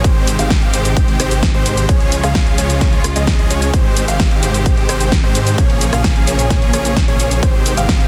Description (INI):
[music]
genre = EDM, festival progressive house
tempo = 130 BPM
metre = 4/4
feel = straight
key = Ab major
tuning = A4 = 439 Hz
[part]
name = rich studio string section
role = sustained chords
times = 0.0-8.1 s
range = C3 to Ab4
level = -27 LUFS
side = equal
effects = sidechain pumping
[part]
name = dark grand piano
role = arpeggios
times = 0.0-8.1 s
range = C5 to F5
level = -27 LUFS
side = equal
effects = sidechain pumping, digital delay
[part]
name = supersaw chords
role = riff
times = 0.0-8.1 s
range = Eb3 to F5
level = -22 LUFS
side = equal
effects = sidechain pumping, digital delay
[part]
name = detuned saw bass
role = bass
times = 0.0-8.1 s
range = Ab1 to Ab2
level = -22 LUFS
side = equal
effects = sidechain pumping
[part]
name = big-room dance drum kit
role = drums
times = 0.0-8.1 s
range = hi-hat, rim click, shaker, snare drum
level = -23 LUFS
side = equal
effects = none
[part]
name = electronic kick drum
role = drums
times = 0.0-8.0 s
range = none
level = -17 LUFS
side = equal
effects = none
[sound]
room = little or no reverb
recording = dense, heavily limited modern master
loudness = -14 LUFS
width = mono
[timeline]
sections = 0.0-8.1 A section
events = none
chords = 0.0 Abmaj7; 1.9 Db; 3.7 Abmaj7; 5.6 Bbm7; 7.4 Abmaj7